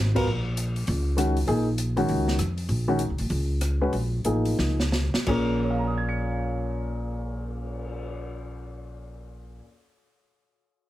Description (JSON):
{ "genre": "modal jazz", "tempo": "168-199 BPM", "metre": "4/4", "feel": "swing 63% on 8ths", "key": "Bb minor", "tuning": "A4 = 444 Hz", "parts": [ { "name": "upright bass", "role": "bass", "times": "0.0-9.6 s", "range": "Ab1 to F2", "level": "-27 LUFS", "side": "equal", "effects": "none" }, { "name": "warm baby grand piano", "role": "accompaniment", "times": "0.1-9.8 s", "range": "Bb2 to Db7", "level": "-27 LUFS", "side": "left 1 dB", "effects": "none" }, { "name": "open jazz drum kit", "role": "drums", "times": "0.2-8.0 s", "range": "crash cymbal, cymbal swell, hi-hat, kick drum, rim click, snare drum", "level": "-33 LUFS", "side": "equal", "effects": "none" } ], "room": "light reverb", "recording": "heavily compressed radio sound", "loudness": "-24 LUFS", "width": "side -14 dB against mid", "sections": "0.3-5.3 A section; 5.3-8.1 B section", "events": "slowing down 2.7-5.3; drum fill 4.6-5.3", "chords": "0.3 Gb/Bb; 5.3 Bbm7" }